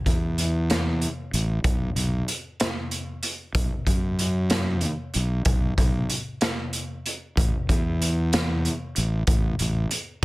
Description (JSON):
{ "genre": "quiet-loud alternative rock", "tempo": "63 BPM (dotted quarters)", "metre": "6/8", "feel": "straight", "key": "unclear", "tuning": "A4 = 440 Hz", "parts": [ { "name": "fuzz fingered electric bass", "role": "bass", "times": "0.1-9.8 s", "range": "A1 to F#2", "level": "-24 LUFS", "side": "equal", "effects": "overdrive" }, { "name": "raw garage drum kit", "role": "drums", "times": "0.1-10.2 s", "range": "crash cymbal, hi-hat, kick drum, snare drum", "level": "-24 LUFS", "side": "equal", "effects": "none" } ], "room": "little or no reverb", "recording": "dense, heavily limited modern master", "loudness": "-22 LUFS", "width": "side -20 dB against mid", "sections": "0.0-10.2 A section", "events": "none", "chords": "none", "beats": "0.69 | 1.65 2.60 | 3.56 4.51 | 5.46 6.42 | 7.38 8.33 | 9.28 10.23" }